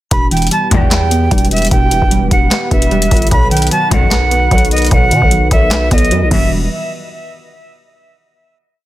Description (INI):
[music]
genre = hip hop, trap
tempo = 150 BPM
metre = 4/4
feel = half-time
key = E harmonic minor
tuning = A4 = 435 Hz
[part]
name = jazz flute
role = melody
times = 0.1-6.5 s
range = D#5 to B5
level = -16 LUFS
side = right 2 dB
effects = tape echo
[part]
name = soft round pluck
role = accompaniment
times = 0.1-6.5 s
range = B2 to B4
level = -19 LUFS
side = right 2 dB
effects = chorus
[part]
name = dark analog pad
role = sustained chords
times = 0.1-6.5 s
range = D#3 to B4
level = -24 LUFS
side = left 1 dB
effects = chorus
[part]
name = growling 808-style bass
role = bass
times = 0.1-6.7 s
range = E1 to B2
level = -15 LUFS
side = equal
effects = none
[part]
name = booming analog drum machine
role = drums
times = 0.1-6.5 s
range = crash cymbal, handclaps, hi-hat, kick drum, snare drum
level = -14 LUFS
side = equal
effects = none
[part]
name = dark symphonic string section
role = stabs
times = 0.7-1.1, 3.9-6.5 s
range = B1 to E3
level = -22 LUFS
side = left 5 dB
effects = none
[sound]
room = digital ambience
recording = dense, heavily limited modern master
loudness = -10 LUFS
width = side -15 dB against mid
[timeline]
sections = 0.1-6.5 hook; 6.5-8.1 final hit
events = none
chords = 0.1 Em; 3.3 B; 6.3 Em; 6.5 N.C.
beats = | 0.11 0.51 0.91 1.31 | 1.71 2.11 2.51 2.91 | 3.31 3.71 4.11 4.51 | 4.91 5.31 5.71 6.11 | 6.51